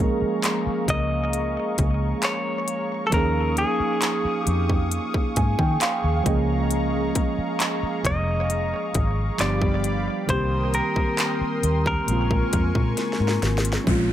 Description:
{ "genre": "contemporary R&B", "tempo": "67 BPM", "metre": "4/4", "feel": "straight", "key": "Bb dorian", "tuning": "A4 = 441 Hz", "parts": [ { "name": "muted felt-like synth keys", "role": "accompaniment", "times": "0.0-14.1 s", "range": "Db3 to Ab5", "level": "-26 LUFS", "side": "right 2 dB", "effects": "chorus, tape echo" }, { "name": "warm analog pad", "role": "sustained chords", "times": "0.0-13.9 s", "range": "G4 to Eb6", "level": "-31 LUFS", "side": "left 2 dB", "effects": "chorus" }, { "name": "vintage muted fingered electric bass", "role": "bass", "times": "0.0-14.1 s", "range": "F1 to Eb3", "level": "-24 LUFS", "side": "equal", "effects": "none" }, { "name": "trap drum kit", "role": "drums", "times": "0.4-14.1 s", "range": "handclaps, hi-hat, kick drum, snare drum", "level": "-25 LUFS", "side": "equal", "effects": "none" }, { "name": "direct-recorded clean electric guitar", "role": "melody", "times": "0.9-13.4 s", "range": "Ab4 to Eb5", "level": "-27 LUFS", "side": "left 1 dB", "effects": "tape echo" }, { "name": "downlifter", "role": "sound effects", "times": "13.9-14.1 s", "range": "none", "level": "-30 LUFS", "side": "equal", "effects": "none" } ], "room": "light reverb, digital ambience", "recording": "echo-heavy mix", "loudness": "-20 LUFS", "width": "side -11 dB against mid", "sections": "0.0-13.9 A section", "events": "synth keys fill 4.9-6.7; drum fill 13.0-13.9", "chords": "0.0 Bbm7; 3.1 Eb9sus4; 6.3 Bbm7; 9.4 G7; 10.3 Cm7; 12.1 Bbm9", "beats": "0.44 1.33 2.23 | 3.13 4.02 4.92 5.81 | 6.71 7.60 8.50 9.39 | 10.29 11.19 12.08 12.98 | 13.87" }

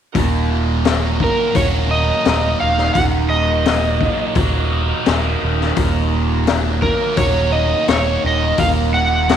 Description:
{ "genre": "psychedelic rock", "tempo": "85 BPM", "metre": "4/4", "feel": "straight", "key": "Eb minor", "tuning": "A4 = 440 Hz", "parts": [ { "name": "bright tonewheel organ", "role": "sustained chords", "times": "0.1-9.4 s", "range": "Bb3 to Bb4", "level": "-30 LUFS", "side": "right 11 dB", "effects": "slow rotary speaker, overdrive" }, { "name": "thick fuzz guitar", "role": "riff", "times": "0.1-9.4 s", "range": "Eb2 to Eb4", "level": "-20 LUFS", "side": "right 1 dB", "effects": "distortion, phaser" }, { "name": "raw garage drum kit", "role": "drums", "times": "0.1-9.4 s", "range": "hi-hat, kick drum, snare drum", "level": "-19 LUFS", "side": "left 5 dB", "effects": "none" }, { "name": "deep dub picked electric bass", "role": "bass", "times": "0.2-9.4 s", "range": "Eb1", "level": "-19 LUFS", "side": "right 1 dB", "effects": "none" }, { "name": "overdriven slide guitar", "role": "melody", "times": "1.2-9.4 s", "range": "Bb4 to Gb5", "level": "-18 LUFS", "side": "right 1 dB", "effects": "slapback echo" } ], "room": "light reverb, small room reverb", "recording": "1960s-style stereo", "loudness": "-14 LUFS", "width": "side -9 dB against mid", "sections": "0.2-9.4 A section", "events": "none", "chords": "0.2 Ebm", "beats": "| 0.16 0.86 1.56 2.27 | 2.97 3.67 4.37 5.08 | 5.78 6.48 7.18 7.89 | 8.59 9.29" }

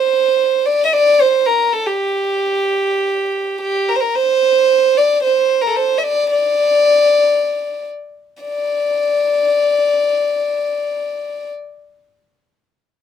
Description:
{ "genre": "arabic", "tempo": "free time", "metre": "none", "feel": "none", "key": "D maqam bayati", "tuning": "A4 = 440 Hz", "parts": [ { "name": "warm violin", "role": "solo", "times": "0.0-11.5 s", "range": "G4 to Eb5+48c", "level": "-14 LUFS", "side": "equal", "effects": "none" } ], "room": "little or no reverb", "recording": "minimal, uncompressed stereo recording", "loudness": "-13 LUFS", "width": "side -8 dB against mid", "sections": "0.0-8.4 A section; 8.4-12.7 B section", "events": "none", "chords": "none", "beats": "free time" }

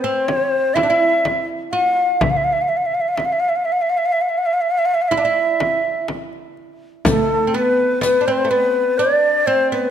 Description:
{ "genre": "Arabic maqam ensemble", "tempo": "124 BPM (eighths)", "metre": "10/8", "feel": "straight", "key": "E maqam hijaz", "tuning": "A4 = 444 Hz", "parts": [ { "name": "breathy reedy ney", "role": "melody", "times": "0.0-9.9 s", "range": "A4 to F5+34c", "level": "-16 LUFS", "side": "equal", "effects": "none" }, { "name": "oud", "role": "second line", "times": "0.0-9.9 s", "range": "A3 to F4+25c", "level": "-22 LUFS", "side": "right 4 dB", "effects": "none" }, { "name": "darbuka", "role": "percussion", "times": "0.0-9.8 s", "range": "none", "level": "-30 LUFS", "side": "left 4 dB", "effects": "none" }, { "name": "frame drum", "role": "percussion", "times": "0.3-8.2 s", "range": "none", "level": "-24 LUFS", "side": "left 2 dB", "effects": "none" }, { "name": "riq", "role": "percussion", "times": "7.1-9.1 s", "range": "none", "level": "-30 LUFS", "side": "left 4 dB", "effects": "none" } ], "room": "moderate concert hall reverb, RT60 2.0 s", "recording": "none", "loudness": "-15 LUFS", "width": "side -9 dB against mid", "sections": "0.0-7.1 A section; 7.1-9.9 B section", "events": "none", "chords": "none", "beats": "0.29 0.77 1.25 1.74 | 2.22 2.70 3.19 3.67 4.15 4.63 5.12 5.60 6.09 6.57 | 7.05 7.54 8.02 8.51 8.99 9.47" }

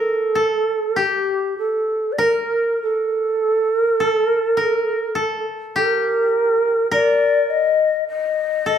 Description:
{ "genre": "japanese traditional, Japanese chamber music", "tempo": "49-52 BPM", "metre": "4/4", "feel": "rubato", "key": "unclear", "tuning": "A4 = 439 Hz", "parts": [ { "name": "mellow hollow shakuhachi", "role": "melody", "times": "0.0-8.8 s", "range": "G4 to Eb5", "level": "-18 LUFS", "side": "equal", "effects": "none" }, { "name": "koto", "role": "second line", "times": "0.0-8.8 s", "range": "G4 to Bb4", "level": "-22 LUFS", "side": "left 1 dB", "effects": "none" } ], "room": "moderate recital hall reverb, RT60 1.3 s", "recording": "minimal, uncompressed stereo recording", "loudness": "-17 LUFS", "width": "side -8 dB against mid", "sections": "0.0-8.8 A section", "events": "none", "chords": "none", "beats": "0.97 | 2.19 3.40 4.58 5.75 | 6.91 8.08" }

